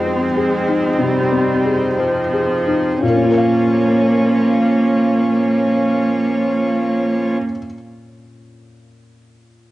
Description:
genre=neoclassical piano and strings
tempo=57-64 BPM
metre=4/4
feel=rubato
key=Bb minor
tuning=A4 = 436 Hz
part: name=rich cello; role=second line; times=0.0-7.4 s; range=Bb3 to C4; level=-18 LUFS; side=right 2 dB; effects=cassette tape
part: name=felt-muted upright piano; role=accompaniment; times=0.0-9.7 s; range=F2 to F5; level=-20 LUFS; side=left 3 dB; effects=cassette tape
part: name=rich viola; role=accompaniment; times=0.0-7.4 s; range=F3 to Db4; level=-22 LUFS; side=right 1 dB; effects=cassette tape
part: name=pedal harmonium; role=sustained chords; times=0.0-7.4 s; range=F3 to Db5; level=-21 LUFS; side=left 1 dB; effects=cassette tape
room=light reverb, small room ambience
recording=home recording on cassette, nothing above 10.3 kHz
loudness=-14 LUFS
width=side -16 dB against mid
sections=0.0-3.0 A section; 3.0-7.2 B section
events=slowing down 0.0-3.0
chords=0.0 Fm7; 3.0 Bbm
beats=0.04 0.99 1.98 | 3.02 4.05 5.09 6.14

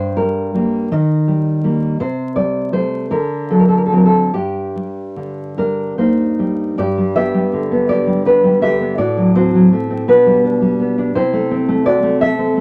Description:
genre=romantic piece for solo classical guitar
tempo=47-58 BPM (dotted quarters)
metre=6/8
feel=rubato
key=G minor, G major from 6.8 s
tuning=A4 = 435 Hz
part: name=nylon-string guitar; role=solo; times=0.0-12.6 s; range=G2 to E5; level=-16 LUFS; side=equal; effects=none
room=moderate studio ambience, RT60 0.5 s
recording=vinyl crackle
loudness=-16 LUFS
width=mono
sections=0.0-6.8 A section; 6.8-12.6 B section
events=none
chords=0.0 Gm; 0.9 Eb; 2.0 Csus2; 3.1 D7; 4.3 Gm; 6.8 G; 9.0 F#dim/A; 10.1 G/B; 11.1 Am/C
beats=0.92 | 2.00 3.11 | 4.33 5.57 | 6.78 7.89 | 8.99 10.08 | 11.15 12.20

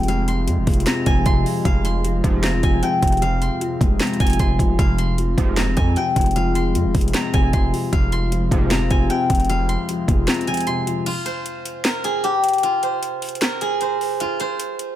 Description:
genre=hip hop, trap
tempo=153 BPM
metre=4/4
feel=half-time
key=F minor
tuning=A4 = 435 Hz
part: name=steel-string zither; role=melody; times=0.0-15.0 s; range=F4 to C6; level=-23 LUFS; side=equal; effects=digital delay
part: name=felt-muted upright piano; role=accompaniment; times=0.0-11.1 s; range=F2 to C4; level=-24 LUFS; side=left 5 dB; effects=none
part: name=dark analog pad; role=sustained chords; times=0.0-11.0 s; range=C3 to F4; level=-28 LUFS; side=right 1 dB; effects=chorus
part: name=hard-hitting 808-style bass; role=bass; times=0.0-10.3 s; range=F1 to F2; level=-21 LUFS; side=equal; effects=none
part: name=trap drum kit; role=drums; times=0.0-14.9 s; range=crash cymbal, handclaps, hi-hat, kick drum, snare drum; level=-21 LUFS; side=right 1 dB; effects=none
part: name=sync-sweep polysynth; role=stabs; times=2.2-2.5, 5.4-5.7, 8.5-8.8 s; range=Ab2 to F3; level=-28 LUFS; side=right 4 dB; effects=chorus
room=light reverb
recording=none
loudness=-17 LUFS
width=side -12 dB against mid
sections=0.0-11.1 A section; 11.1-15.0 B section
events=kick muted 10.3-11.1; break 11.1-15.0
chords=0.0 Fm; 11.1 N.C.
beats=| 0.08 0.47 0.87 1.26 | 1.65 2.04 2.44 2.83 | 3.22 3.61 4.00 4.40 | 4.79 5.18 5.57 5.97 | 6.36 6.75 7.14 7.53 | 7.93 8.32 8.71 9.10 | 9.49 9.89 10.28 10.67 | 11.06 11.46 11.85 12.24 | 12.63 13.03 13.42 13.81 | 14.20 14.59

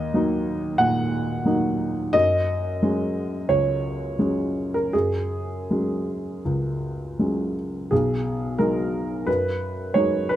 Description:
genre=neoclassical minimalist piano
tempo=78-93 BPM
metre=4/4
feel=rubato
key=B major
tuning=A4 = 440 Hz
part: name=warm upright piano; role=solo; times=0.0-10.4 s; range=B1 to F#5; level=-21 LUFS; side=equal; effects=none
room=light reverb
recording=none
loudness=-21 LUFS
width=side -12 dB against mid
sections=0.0-7.9 A section; 7.9-10.4 B section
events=none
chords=0.0 D#m; 2.1 F#sus2; 7.9 B6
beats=0.14 0.79 1.45 | 2.14 2.82 3.49 4.19 | 4.93 5.69 6.45 7.19 | 7.91 8.59 9.27 9.95

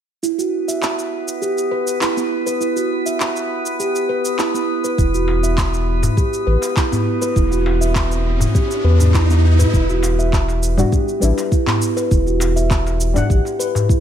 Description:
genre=organic downtempo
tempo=101 BPM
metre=4/4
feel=straight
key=E minor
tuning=A4 = 441 Hz
part: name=steel tongue drum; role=arpeggios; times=0.2-14.0 s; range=B3 to E5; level=-20 LUFS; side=right 2 dB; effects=low-pass filter, ping-pong delay
part: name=electronic shaker and handclaps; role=drums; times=0.2-14.0 s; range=none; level=-26 LUFS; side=equal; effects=none
part: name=drifting glass-harmonics texture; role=texture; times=0.7-9.7 s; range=B3 to B4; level=-28 LUFS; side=left 2 dB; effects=chorus, built-in reverb
part: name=warm sub bass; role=bass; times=5.0-13.4 s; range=E1 to E2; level=-16 LUFS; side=equal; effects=tube saturation
part: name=electronic kick drum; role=drums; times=5.0-14.0 s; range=none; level=-17 LUFS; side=equal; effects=none
part: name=riser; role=sound effects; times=7.1-9.7 s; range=none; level=-27 LUFS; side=right 1 dB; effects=none
part: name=darbuka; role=percussion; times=5.3-13.9 s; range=none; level=-23 LUFS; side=left 2 dB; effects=none
part: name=deep mellow chord stab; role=accompaniment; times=10.8-14.0 s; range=G3 to F#5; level=-23 LUFS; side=left 2 dB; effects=chorus, sidechain pumping, ping-pong delay
room=light reverb, digital ambience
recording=none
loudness=-15 LUFS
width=side -9 dB against mid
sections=0.2-9.7 A section; 9.7-14.0 B section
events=riser 7.1-9.7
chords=0.2 E5; 5.0 G6/E (rootless); 7.4 E5; 9.7 Em7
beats=| 0.23 0.82 1.42 2.01 | 2.61 3.20 3.79 4.39 | 4.98 5.58 6.17 6.77 | 7.36 7.95 8.55 9.14 | 9.74 10.33 10.92 11.52 | 12.11 12.71 13.30 13.89

